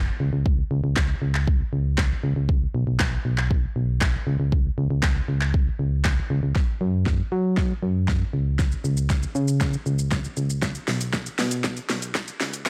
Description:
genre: dance-pop.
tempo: 118 BPM.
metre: 4/4.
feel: straight.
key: unclear.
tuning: A4 = 439 Hz.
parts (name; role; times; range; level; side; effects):
solid FM bass; bass; 0.0-12.7 s; F#1 to F#3; -26 LUFS; equal; sidechain pumping.
deep house drum kit; drums; 0.5-12.7 s; handclaps, hi-hat, kick drum, shaker, snare drum; -26 LUFS; equal; soft clipping on snare.
room: little or no reverb.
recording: blown-out, overdriven recording, overdrive, high-pass filter.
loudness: -24 LUFS.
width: mono.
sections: 0.0-6.6 A section; 6.6-12.7 B section.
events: build-up 6.6-12.7; drum fill 6.6-12.7; filter sweep 6.6-12.7.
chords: none.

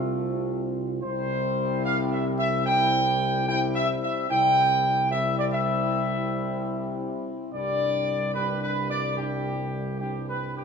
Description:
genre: classical, ceremonial fanfare.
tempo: 74 BPM.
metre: 4/4.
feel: straight.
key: C major.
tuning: A4 = 442 Hz.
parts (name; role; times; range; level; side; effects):
dark trumpet section; melody; 0.0-10.6 s; F4 to G5; -25 LUFS; equal; none.
warm French horn section; sustained chords; 0.0-10.6 s; C4 to F4; -32 LUFS; left 4 dB; none.
warm trombone section; sustained chords; 0.0-10.6 s; G2 to A3; -34 LUFS; left 1 dB; none.
warm tuba; bass; 0.0-10.6 s; C2; -30 LUFS; right 2 dB; none.
room: wet recital hall reverb, RT60 1.5 s.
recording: none.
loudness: -23 LUFS.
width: side -6 dB against mid.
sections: 0.0-10.6 A section.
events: none.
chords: 0.0 F/C; 1.0 C; 7.5 G/C.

